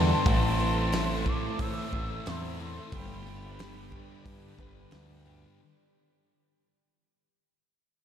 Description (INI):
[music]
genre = rock, shoegaze and dream pop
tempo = 90 BPM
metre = 4/4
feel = straight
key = G major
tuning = A4 = 444 Hz
[part]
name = pure breathy sine lead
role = melody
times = 0.0-4.3 s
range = B5 to E6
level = -36 LUFS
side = equal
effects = chorus, diffuse ambient delay
[part]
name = evolving wavetable pad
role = sustained chords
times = 0.0-5.6 s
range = G4 to B5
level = -41 LUFS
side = equal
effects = chorus, built-in reverb
[part]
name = picked twelve-string acoustic guitar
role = arpeggios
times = 0.0-5.6 s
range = G3 to B4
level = -39 LUFS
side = equal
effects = lush chorus, diffuse ambient delay
[part]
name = crunchy overdriven guitar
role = riff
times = 0.0-5.6 s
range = G2 to A4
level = -37 LUFS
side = right 8 dB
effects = reverse reverb
[part]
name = thick fuzz guitar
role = riff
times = 0.0-5.6 s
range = G2 to A3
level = -34 LUFS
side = left 6 dB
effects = distortion, lush chorus
[part]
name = growling picked electric bass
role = bass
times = 0.0-5.4 s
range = G1 to A2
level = -32 LUFS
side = equal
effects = overdrive
[part]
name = loose indie drum kit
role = drums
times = 0.3-5.1 s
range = hi-hat, kick drum, snare drum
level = -32 LUFS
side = equal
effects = none
[sound]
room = moderate lush hall reverb, RT60 3.1 s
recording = dreamy mix soaked in reverb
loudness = -26 LUFS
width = side -9 dB against mid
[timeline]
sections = 0.0-5.6 A section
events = fade-out 0.0-5.6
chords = 0.3 Am; 2.9 G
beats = | 0.27 0.94 1.60 2.27 | 2.93 3.60 4.26 4.93